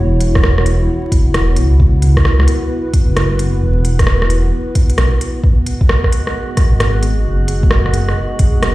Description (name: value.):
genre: future garage.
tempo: 132 BPM.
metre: 4/4.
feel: swing 65% on 16ths.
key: G# minor.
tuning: A4 = 439 Hz.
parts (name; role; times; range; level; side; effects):
dark analog pad; sustained chords; 0.0-8.7 s; B3 to F#5; -21 LUFS; equal; chorus, sidechain pumping.
dark detuned saw bass; bass; 0.0-8.7 s; E1 to C#2; -13 LUFS; equal; sidechain pumping.
organic electronic drum kit; drums; 0.2-8.7 s; hi-hat, rim click; -20 LUFS; right 1 dB; none.
electronic kick drum; drums; 0.4-8.5 s; none; -12 LUFS; equal; none.
drifting glass-harmonics texture; texture; 5.6-8.7 s; F#4; -29 LUFS; right 2 dB; chorus, built-in reverb.
room: light reverb.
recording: played on a big sound system in a bare room, large studio reverb, vinyl crackle.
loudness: -11 LUFS.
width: side -18 dB against mid.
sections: 0.0-5.4 A section; 5.4-8.7 A section.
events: none.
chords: 0.0 F#7sus4; 5.4 G#m7.